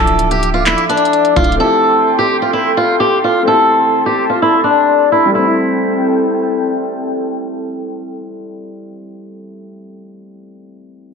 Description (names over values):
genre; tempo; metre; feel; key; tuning
hip hop, trap; 128 BPM; 4/4; half-time; A minor; A4 = 440 Hz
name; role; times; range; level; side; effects
picked swing-style acoustic guitar; melody; 0.0-6.7 s; D4 to A4; -13 LUFS; left 1 dB; none
warm concert grand piano; accompaniment; 0.0-11.1 s; G3 to A4; -20 LUFS; left 2 dB; none
airy breathy pad; sustained chords; 0.0-8.9 s; F3 to D6; -19 LUFS; right 1 dB; chorus
warm 808-style bass; bass; 0.0-1.6 s; D1; -20 LUFS; equal; none
trap drum kit; drums; 0.1-1.6 s; handclaps, hi-hat, kick drum; -17 LUFS; equal; none
room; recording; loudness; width
light reverb; low-pass filter; -11 LUFS; side -5 dB against mid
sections
0.0-5.3 A section; 5.3-9.1 B section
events
filter sweep 0.0-5.3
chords
0.0 Dmadd9; 1.6 Am7